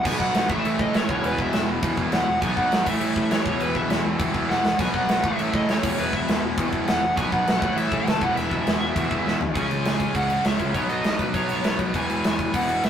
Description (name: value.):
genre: punk rock.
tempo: 202 BPM.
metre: 4/4.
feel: straight.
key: E major.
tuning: A4 = 439 Hz.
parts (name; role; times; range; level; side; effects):
smooth overdriven lead guitar; melody; 0.0-12.9 s; B4 to A5; -26 LUFS; equal; none.
cranked stack guitar; riff; 0.0-12.9 s; E2 to C#4; -27 LUFS; right 3 dB; overdrive.
distorted electric guitar; riff; 0.0-12.9 s; E2 to C#4; -30 LUFS; left 5 dB; distortion.
distorted electric guitar; riff; 0.0-9.5 s; A2 to F#4; -34 LUFS; left 2 dB; none.
fuzz picked electric bass; bass; 0.0-12.9 s; E1 to A2; -31 LUFS; left 1 dB; overdrive.
big rock drum kit; drums; 0.1-12.9 s; crash cymbal, kick drum, snare drum, splash cymbal, toms; -25 LUFS; equal; none.
room: moderate stone room reverb, RT60 1.4 s.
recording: rough rehearsal-room recording, tube saturation.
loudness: -20 LUFS.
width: side -8 dB against mid.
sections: 0.1-9.6 A section; 9.6-12.9 B section.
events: drum fill 4.5, 9.3.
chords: 0.1 B; 0.5 A; 1.1 E; 2.4 B; 2.9 A; 3.5 E; 4.8 B; 5.2 A; 5.8 E; 7.2 B; 7.6 A; 8.2 E; 9.6 C#m; 10.8 B; 11.9 E.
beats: | 0.06 0.35 0.65 0.94 | 1.24 1.53 1.83 2.13 | 2.42 2.72 3.02 3.31 | 3.61 3.90 4.20 4.50 | 4.79 5.09 5.39 5.69 | 5.98 6.28 6.58 6.88 | 7.17 7.47 7.77 8.07 | 8.37 8.66 8.96 9.26 | 9.56 9.86 10.16 10.45 | 10.75 11.05 11.35 11.65 | 11.95 12.25 12.54 12.84.